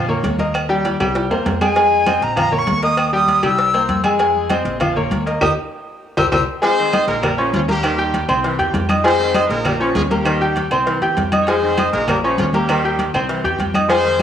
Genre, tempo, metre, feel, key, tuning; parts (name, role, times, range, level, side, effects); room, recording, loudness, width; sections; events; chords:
latin, salsa; 198 BPM; 4/4; straight; F minor; A4 = 435 Hz
bright concert grand piano; accompaniment; 0.0-14.2 s; F3 to G6; -18 LUFS; left 2 dB; cassette tape
upright bass; bass; 0.0-14.2 s; Bb1 to F2; -25 LUFS; equal
congas; percussion; 0.1-14.2 s; -24 LUFS; left 2 dB
cowbell; percussion; 0.2-14.2 s; -30 LUFS; left 3 dB
timbales and agogo bells; percussion; 0.2-14.1 s; -26 LUFS; right 7 dB
claves; percussion; 0.5-14.2 s; -30 LUFS; right 2 dB
bright silver concert flute; melody; 1.6-6.4 s; Ab5 to E6; -18 LUFS; equal; cassette tape
bright horn section; melody; 6.6-14.2 s; F3 to Db5; -22 LUFS; left 2 dB; cassette tape
clear saxophone section; second line; 6.6-14.2 s; Eb3 to Ab3; -23 LUFS; right 1 dB; cassette tape
moderate spring reverb, RT60 2.6 s; home recording on cassette, studio reverb; -15 LUFS; side -9 dB against mid
0.0-6.6 A section; 6.6-14.2 B section
drum fill 0.8-1.8, 6.0-6.6; band accent 5.4-6.6
0.0 Bbm; 0.5 Eb; 1.2 C7; 1.8 Fm7; 2.4 Bbm; 3.0 Eb; 3.6 C7; 4.2 Fm7; 4.8 Bbm; 5.4 Eb; 6.0 C7; 6.6 Fm7 (rootless); 7.2 Bbm; 7.8 Eb; 8.4 C; 9.0 Fm7; 9.7 Bbm; 10.3 Eb; 10.9 C; 11.5 Fm7; 12.1 Bbm; 12.7 Eb; 13.3 C